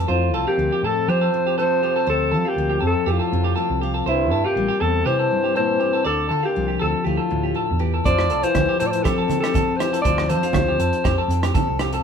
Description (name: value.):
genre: highlife guitar band.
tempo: 120 BPM.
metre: 4/4.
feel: swing 54% on 16ths.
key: F major.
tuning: A4 = 443 Hz.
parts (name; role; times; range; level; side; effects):
picked steel-string acoustic guitar; accompaniment; 0.0-12.0 s; F2 to A4; -28 LUFS; left 7 dB; none.
semi-hollow electric guitar; arpeggios; 0.0-12.0 s; F4 to D5; -25 LUFS; right 1 dB; none.
hollow-body short-scale fingered electric bass; bass; 0.0-12.0 s; A1 to F3; -24 LUFS; right 1 dB; none.
breathy alto saxophone; melody; 0.1-11.3 s; E4 to D5; -22 LUFS; equal; none.
bright trombone; second line; 0.1-11.3 s; G2 to F3; -29 LUFS; left 6 dB; none.
warm soul drum kit; drums; 8.1-12.0 s; hi-hat, kick drum, rim click; -25 LUFS; right 1 dB; none.
congas; percussion; 8.1-11.9 s; none; -27 LUFS; right 7 dB; none.
room: moderate stone room reverb, RT60 1.1 s.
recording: band playing live in one room.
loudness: -18 LUFS.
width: side -7 dB against mid.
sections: 0.1-12.0 A section.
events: none.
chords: 0.1 F; 4.1 C; 6.1 Dm; 8.1 F.